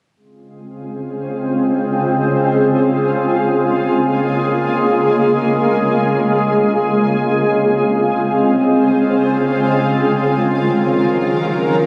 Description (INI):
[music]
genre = hip hop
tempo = free time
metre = none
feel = none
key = Db major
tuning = A4 = 442 Hz
[part]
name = shimmering ambient pad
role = sustained chords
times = 0.8-11.9 s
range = Db3 to Bb4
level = -16 LUFS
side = equal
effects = chorus, built-in reverb
[sound]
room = wet lush hall reverb, RT60 2.5 s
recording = recorded on a phone in the room, studio reverb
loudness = -16 LUFS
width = mono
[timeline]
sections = 0.2-11.9 A section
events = none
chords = 0.2 Dbmaj7; 3.5 Bbm7; 6.8 Dbmaj7; 10.2 Ebm9